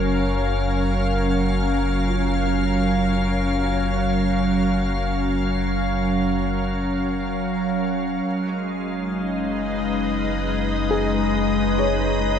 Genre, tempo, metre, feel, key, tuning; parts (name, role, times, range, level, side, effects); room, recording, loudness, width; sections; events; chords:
ambient; 68 BPM; 4/4; straight; F# major; A4 = 441 Hz
soft additive organ-like pad; sustained chords; 0.0-12.4 s; F#3 to E#5; -21 LUFS; equal; ensemble chorus, built-in reverb
felt-muted upright piano; arpeggios; 0.0-12.4 s; E#4 to C#5; -29 LUFS; left 1 dB; ping-pong delay
round analog bass; bass; 0.0-12.4 s; F#1; -26 LUFS; equal
analog drone; drone; 0.0-12.4 s; F#3 to C#4; -30 LUFS; equal; chorus
wet cathedral reverb, RT60 6.2 s; in a vast, echoing space; -20 LUFS; side -8 dB against mid
0.0-12.4 A section
fade-in on felt piano 0.0-12.4; fade-out on synth drone 0.0-12.4
0.0 F#maj7; 8.3 G#m/F#